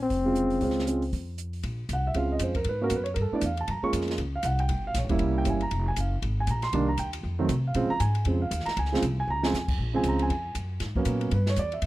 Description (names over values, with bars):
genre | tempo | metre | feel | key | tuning
jazz, small-group swing and bop | 236 BPM | 4/4 | swing 59% on 8ths | Bb minor | A4 = 440 Hz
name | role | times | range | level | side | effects
warm trombone | melody | 0.0-1.4 s | C4 | -27 LUFS | left 3 dB | none
upright bass | bass | 0.0-11.9 s | F1 to C3 | -28 LUFS | equal | none
open jazz drum kit | drums | 0.0-11.9 s | crash cymbal, hi-hat, kick drum, ride cymbal, snare drum | -35 LUFS | equal | none
dark grand piano | accompaniment | 0.3-11.8 s | Db3 to Db6 | -28 LUFS | right 2 dB | none
room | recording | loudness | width
studio reverb | dry, close 1970s-style studio recording | -25 LUFS | side -16 dB against mid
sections
0.0-1.6 A section; 1.6-9.8 B section; 9.8-11.9 B section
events
drum fill 9.3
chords
0.0 Bbm9 (rootless); 1.6 Bbm9; 2.7 Abm11; 3.2 Gadd9; 3.7 Gbmaj9; 4.7 Gm7b5; 5.2 C7b9; 5.7 Fm; 6.7 Cm7; 7.2 F7b9; 7.8 Bbm9; 10.8 Abm11; 11.3 Em7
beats
0.11 0.36 | 0.62 0.88 1.13 1.38 | 1.64 1.89 2.15 2.40 | 2.66 2.91 3.17 3.42 | 3.68 3.93 4.19 4.44 | 4.70 4.95 5.21 5.46 | 5.71 5.97 6.22 6.48 | 6.73 6.99 7.24 7.50 | 7.75 8.01 8.26 8.52 | 8.77 9.02 9.28 9.53 | 9.79 10.04 10.30 10.55 | 10.81 11.06 11.32 11.57 | 11.83